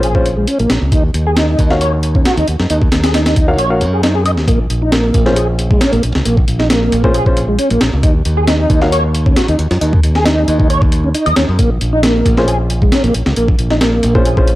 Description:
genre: breakbeat, breaks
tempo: 135 BPM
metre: 4/4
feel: swing 53% on 16ths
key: Bb minor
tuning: A4 = 438 Hz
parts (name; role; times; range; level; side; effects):
- mellow tonewheel organ; riff; 0.0-14.4 s; Ab3 to Eb5; -16 LUFS; equal; chorus vibrato, slow rotary speaker, overdrive, tape echo
- dark grand piano; stabs; 0.0-8.9, 12.4-14.5 s; Db4 to F5; -18 LUFS; left 1 dB; tape echo
- modern bright fingered electric bass; bass; 0.0-14.6 s; Bb1 to Gb2; -16 LUFS; equal; none
- breakbeat sampler-style drum kit; drums; 0.0-14.6 s; hi-hat, kick drum, snare drum; -14 LUFS; equal; none
room: little or no reverb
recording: dry, gritty hardware recording, transformer saturation, vinyl crackle, faint mains hum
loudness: -11 LUFS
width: side -16 dB against mid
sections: 0.0-4.5 A section; 4.5-14.6 B section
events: filter sweep on grand piano 0.0-4.5; kick drops out 3.6-4.5; drop 4.5-14.6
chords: 0.0 Bbm7; 0.9 Ebm7; 4.5 Bbm7; 8.0 Ebm7; 11.6 Bbm7

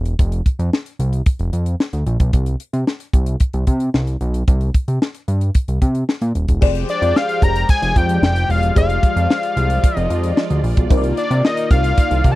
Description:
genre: early-eighties boogie funk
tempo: 112 BPM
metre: 4/4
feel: straight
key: F dorian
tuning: A4 = 440 Hz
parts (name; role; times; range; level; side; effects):
- fat analog bass; bass; 0.0-12.4 s; Eb1 to C3; -18 LUFS; equal; none
- tight funk drum kit; drums; 0.1-12.4 s; crash cymbal, hi-hat, kick drum, snare drum; -15 LUFS; equal; none
- FM electric piano with soft pad layer; accompaniment; 6.6-12.4 s; Eb4 to D5; -24 LUFS; left 2 dB; chorus, phaser
- brassy analog pad; sustained chords; 6.6-12.4 s; Eb3 to G5; -27 LUFS; right 1 dB; chorus
- fat analog lead; melody; 6.9-12.4 s; D5 to Bb5; -20 LUFS; left 2 dB; slapback echo
room: little or no reverb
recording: dry, close 1970s-style studio recording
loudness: -15 LUFS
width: side -17 dB against mid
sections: 0.0-6.6 A section; 6.6-12.4 B section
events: none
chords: 0.0 F5; 2.3 N.C.; 6.6 Fm69; 10.9 Cm11

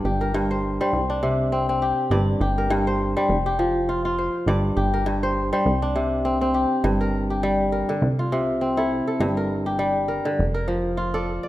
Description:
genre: west african traditional, West African string and xylophone music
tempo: 102 BPM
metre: 4/4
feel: swing 56% on 16ths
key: G dorian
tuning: A4 = 441 Hz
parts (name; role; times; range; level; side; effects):
- kora; arpeggios; 0.0-11.5 s; G2 to D5; -21 LUFS; equal; none
- plucky analog bass; bass; 0.0-11.4 s; F1 to C2; -26 LUFS; equal; none
room: wet recital hall reverb, RT60 1.5 s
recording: none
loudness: -20 LUFS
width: side -15 dB against mid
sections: 0.0-6.8 A section; 6.8-11.5 B section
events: none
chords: 0.0 Gm; 0.9 C5; 2.1 Gm; 3.3 F5; 4.5 Gm; 5.7 C5; 6.8 Gm; 8.0 C; 9.2 Gm; 10.4 F

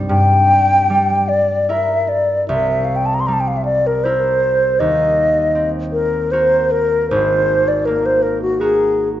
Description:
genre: classical, impressionist duo for flute and harp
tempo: 77 BPM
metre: 3/4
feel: uneven beats, rubato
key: G dorian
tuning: A4 = 440 Hz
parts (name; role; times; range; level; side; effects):
- concert harp; accompaniment; 0.0-9.2 s; Ab1 to Eb5; -20 LUFS; right 1 dB; none
- mellow hollow silver concert flute; melody; 0.1-9.1 s; Gb4 to C6; -14 LUFS; left 1 dB; none
room: wet recital hall reverb, RT60 1.3 s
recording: nothing above 7.5 kHz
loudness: -13 LUFS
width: side -12 dB against mid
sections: 0.1-9.2 A section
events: none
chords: 0.1 Gm6; 2.5 C7; 4.8 Ebm6; 7.1 Ab9

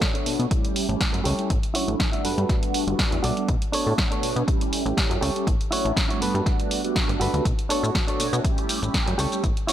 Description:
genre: filtered disco house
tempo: 121 BPM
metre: 4/4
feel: swing 54% on 16ths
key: unclear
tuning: A4 = 439 Hz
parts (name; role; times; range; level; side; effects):
- mellow synth brass; accompaniment; 0.0-9.7 s; F#3 to C#5; -28 LUFS; right 1 dB; chorus, phaser, sidechain pumping, low-pass filter
- electronic kick drum; drums; 0.0-9.5 s; none; -25 LUFS; equal; none
- punchy analog drum machine; drums; 0.0-9.7 s; hi-hat, shaker, snare drum; -28 LUFS; equal; none
- direct-recorded clean electric guitar; riff; 0.1-9.7 s; D4 to E5; -29 LUFS; right 1 dB; sidechain pumping, low-pass filter
- plucky analog bass; bass; 0.3-9.5 s; G1 to B2; -25 LUFS; equal; sidechain pumping, low-pass filter
room: little or no reverb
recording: none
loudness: -21 LUFS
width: side -11 dB against mid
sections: 0.0-9.7 A section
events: filter sweep 0.0-9.7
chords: 0.0 Bm9; 0.5 A7; 1.5 Dmaj9/A; 2.2 Gmaj9; 3.5 Bm9; 4.5 A7; 5.5 Dmaj9/A; 6.2 Gmaj9; 7.5 Bm9; 8.4 A7

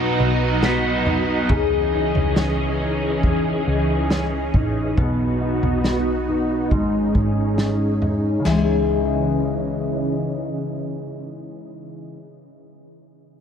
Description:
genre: dream pop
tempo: 69 BPM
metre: 4/4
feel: straight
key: C# minor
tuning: A4 = 439 Hz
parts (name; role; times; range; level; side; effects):
- overdriven semi-hollow guitar; accompaniment; 0.0-2.0 s; B2 to D#4; -26 LUFS; right 4 dB; tremolo, wide subtle chorus, low-pass filter
- string machine, violas; sustained chords; 0.0-12.2 s; C#3 to D#5; -24 LUFS; equal; ensemble chorus, low-pass filter
- fingerpicked twelve-string acoustic guitar; arpeggios; 0.0-12.3 s; G#2 to B4; -23 LUFS; left 2 dB; wide subtle chorus, low-pass filter, tape echo
- vintage muted picked electric bass; bass; 0.0-12.2 s; G#1 to C#2; -26 LUFS; equal; none
- glockenspiel with rubber mallets; texture; 0.0-1.9 s; G#6 to B6; -33 LUFS; left 1 dB; none
- vintage drum kit; drums; 0.6-8.7 s; crash cymbal, kick drum, snare drum, toms; -23 LUFS; equal; none
room: light reverb, small room ambience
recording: none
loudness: -18 LUFS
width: side -7 dB against mid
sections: 0.0-8.5 A section; 8.5-11.9 B section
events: filter sweep 0.0-8.5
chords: 0.0 B; 1.5 C#madd9; 5.0 B; 6.7 G#sus4; 8.5 C#madd9

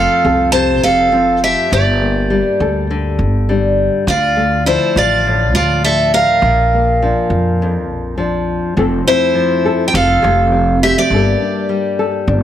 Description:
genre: highlife guitar band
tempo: 102 BPM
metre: 4/4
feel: straight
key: F major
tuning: A4 = 440 Hz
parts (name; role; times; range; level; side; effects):
- picked steel-string acoustic guitar; melody; 0.0-12.1 s; E4 to A5; -14 LUFS; equal; none
- nylon-string guitar; accompaniment; 0.0-12.4 s; F2 to A4; -18 LUFS; left 2 dB; none
- upright bass; bass; 0.0-12.4 s; F1 to F2; -17 LUFS; equal; none
room: moderate plate reverb, RT60 3.0 s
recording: none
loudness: -12 LUFS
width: side -10 dB against mid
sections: 0.0-8.8 A section; 8.8-12.4 B section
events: none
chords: 0.0 F; 1.7 Gmadd9; 4.1 Dmadd9; 6.4 Bb; 8.8 F; 11.1 Gmadd9

